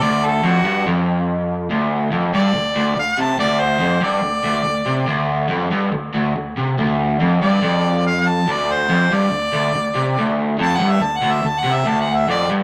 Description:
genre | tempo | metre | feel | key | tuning
rock | 142 BPM | 4/4 | straight | unclear | A4 = 442 Hz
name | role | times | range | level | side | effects
clear harmonica | melody | 0.0-12.5 s | F#4 to A5 | -22 LUFS | equal | overdrive
crunchy overdriven guitar | riff | 0.0-12.6 s | D2 to C3 | -20 LUFS | equal | spring reverb
room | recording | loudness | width
wet studio reverb, RT60 0.5 s | rough rehearsal-room recording, tube saturation | -18 LUFS | mono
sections
0.0-1.7 A section; 1.7-12.6 B section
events
harmonica solo 1.7-12.6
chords
0.0 D; 1.7 N.C.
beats
| 0.02 0.44 0.86 1.28 | 1.70 2.12 2.54 2.96 | 3.38 3.81 4.23 4.66 | 5.08 5.50 5.93 6.35 | 6.78 7.20 7.62 8.05 | 8.47 8.90 9.32 9.74 | 10.17 10.59 11.01 11.43 | 11.86 12.28

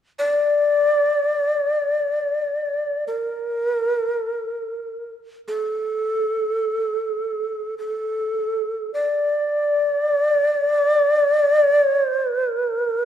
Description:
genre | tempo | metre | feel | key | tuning
japanese traditional | free time | none | none | unclear | A4 = 438 Hz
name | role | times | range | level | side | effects
breathy long shakuhachi | melody | 0.2-13.1 s | A4 to D5 | -19 LUFS | equal | none
room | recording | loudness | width
moderate concert hall reverb, RT60 2.2 s | dark, warm production | -19 LUFS | side -10 dB against mid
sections
0.0-13.1 A section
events
none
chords
none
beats
free time

